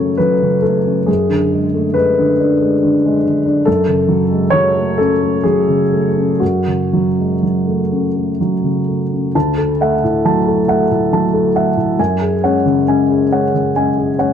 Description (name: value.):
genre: neoclassical minimalist piano.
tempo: 59-72 BPM.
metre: 3/4.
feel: rubato.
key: F# minor.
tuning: A4 = 440 Hz.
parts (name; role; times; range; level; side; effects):
dark upright piano; solo; 0.0-14.3 s; D2 to A5; -12 LUFS; equal; none.
room: light reverb.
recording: dark, warm production.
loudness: -12 LUFS.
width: side -8 dB against mid.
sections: 0.0-9.3 A section; 9.3-14.3 B section.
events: none.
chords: 0.0 F#m; 1.1 G#dim/F#; 3.7 F#m; 9.3 Dadd9; 12.0 F#sus2.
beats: 0.20 | 1.08 1.95 2.82 | 3.67 4.53 5.44 | 6.41 7.42 8.39 | 9.35 10.25 11.12 | 11.99 12.87 13.75.